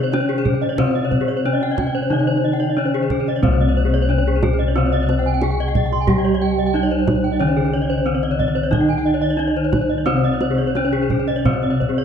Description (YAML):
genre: Balinese gamelan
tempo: 91 BPM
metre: 4/4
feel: straight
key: C pelog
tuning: A4 = 440 Hz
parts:
  - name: gamelan-type bronze metallophone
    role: melody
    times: 0.0-12.0 s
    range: C4 to Ab4-20c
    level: -22 LUFS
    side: right 1 dB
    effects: none
  - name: gamelan-type bronze metallophone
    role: accompaniment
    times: 0.0-12.0 s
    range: C3 to G3-30c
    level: -24 LUFS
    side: equal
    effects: none
  - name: gamelan-type bronze metallophone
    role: arpeggios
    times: 0.0-12.0 s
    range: Ab4-20c to C6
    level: -24 LUFS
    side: right 1 dB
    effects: none
  - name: gamelan-type bossed gongs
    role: bass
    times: 0.0-12.0 s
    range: C2 to G4-30c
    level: -22 LUFS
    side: left 2 dB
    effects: none
  - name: gamelan-type bronze metallophone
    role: arpeggios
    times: 0.1-12.0 s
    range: Ab4-20c to Ab5-20c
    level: -26 LUFS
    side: left 6 dB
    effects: none
  - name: kendang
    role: percussion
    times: 0.1-12.0 s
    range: none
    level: -24 LUFS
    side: right 2 dB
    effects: none
room: moderate scoring stage reverb, RT60 1.5 s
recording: dark, warm production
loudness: -16 LUFS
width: side -8 dB against mid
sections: 0.0-12.0 A section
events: none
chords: none